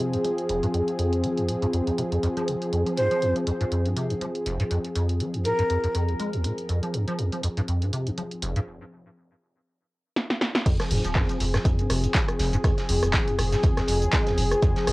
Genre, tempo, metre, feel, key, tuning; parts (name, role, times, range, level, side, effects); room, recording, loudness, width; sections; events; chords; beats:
acid house; 121 BPM; 4/4; swing 56% on 16ths; F minor; A4 = 440 Hz
warm analog pad; sustained chords; 0.0-14.9 s; F3 to Ab4; -28 LUFS; left 1 dB; chorus, sidechain pumping, cassette tape
deep acid bass; riff; 0.0-14.9 s; F1 to Ab3; -27 LUFS; equal; ensemble chorus, cassette tape
punchy analog drum machine; drums; 0.0-14.9 s; crash cymbal, handclaps, hi-hat, rim click, shaker, snare drum; -30 LUFS; equal; cassette tape
breathy jazz flute; melody; 3.0-5.9 s; Bb4 to C5; -27 LUFS; equal; cassette tape, tape echo
electronic kick drum; drums; 10.7-14.7 s; -23 LUFS; equal; cassette tape
loose indie drum kit; drums; 10.7-14.9 s; hi-hat, snare drum; -39 LUFS; right 1 dB; high-pass filter on hats, cassette tape, high-pass filter on snare, high-pass filter on room
warm sub bass; bass; 10.9-14.9 s; Eb1 to F1; -26 LUFS; equal; sidechain pumping
moderate small room reverb, RT60 0.5 s; home recording on cassette; -22 LUFS; side -20 dB against mid
0.0-10.7 A section; 10.7-14.9 B section
break 8.7-10.7; drum fill 10.2-10.7; drop 10.7-14.9
0.0 Fm
0.24 | 0.74 1.24 1.73 2.23 | 2.72 3.22 3.72 4.21 | 4.71 5.20 5.70 6.20 | 6.69 7.19 7.68 8.18 | 8.68 9.17 9.67 10.16 | 10.66 11.15 11.65 12.15 | 12.64 13.14 13.63 14.13 | 14.62